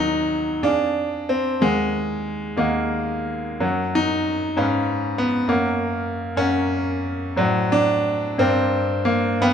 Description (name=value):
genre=classical, romantic character piece for solo piano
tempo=54-68 BPM (dotted quarters)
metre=6/8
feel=rubato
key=unclear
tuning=A4 = 440 Hz
part: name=warm grand piano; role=solo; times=0.0-9.5 s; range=Eb2 to G5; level=-19 LUFS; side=equal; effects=none
room=wet recital hall reverb, RT60 1.8 s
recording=minimal, uncompressed stereo recording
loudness=-19 LUFS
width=side -8 dB against mid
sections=0.0-9.5 A section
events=none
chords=0.0 Ebm; 0.6 Ddim/F; 1.6 Ebm; 3.6 Gb; 4.6 Fdim/Ab; 5.5 Gb; 7.4 D7/A; 8.4 Gm